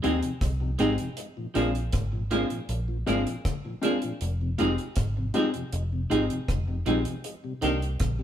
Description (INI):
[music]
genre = lovers rock reggae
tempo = 79 BPM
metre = 4/4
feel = straight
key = F dorian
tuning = A4 = 436 Hz
[part]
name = clear baby grand piano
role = accompaniment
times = 0.0-7.8 s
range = Ab3 to G4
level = -30 LUFS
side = left 3 dB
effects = none
[part]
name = mellow tonewheel organ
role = accompaniment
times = 0.0-8.2 s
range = F2 to Eb4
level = -36 LUFS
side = left 2 dB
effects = slow rotary speaker, tape echo
[part]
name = clean electric guitar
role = stabs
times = 0.0-8.2 s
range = Eb3 to Ab4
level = -28 LUFS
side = right 2 dB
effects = tremolo
[part]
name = vintage muted fingered electric bass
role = bass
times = 0.0-8.2 s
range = F1 to Eb2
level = -29 LUFS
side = equal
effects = none
[part]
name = deep reggae drum kit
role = drums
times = 0.0-8.2 s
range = hi-hat, kick drum, rim click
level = -31 LUFS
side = equal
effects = tape echo
[sound]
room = moderate stone room reverb, RT60 1.3 s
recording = band playing live in one room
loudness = -25 LUFS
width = side -10 dB against mid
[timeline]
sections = 0.0-8.2 A section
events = none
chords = 0.0 Fm7; 1.2 Bb7; 4.2 Fm7; 7.2 Cm7